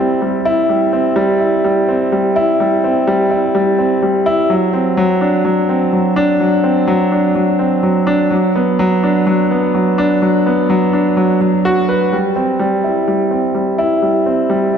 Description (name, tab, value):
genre	electronica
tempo	126 BPM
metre	4/4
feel	straight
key	unclear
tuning	A4 = 440 Hz
part	clear grand piano	solo	0.0-14.8 s	F#3 to B4	-12 LUFS	equal	none
room	wet concert hall reverb, RT60 2.2 s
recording	none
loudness	-12 LUFS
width	side -7 dB against mid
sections	0.0-12.1 A section; 12.1-14.8 B section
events	none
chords	none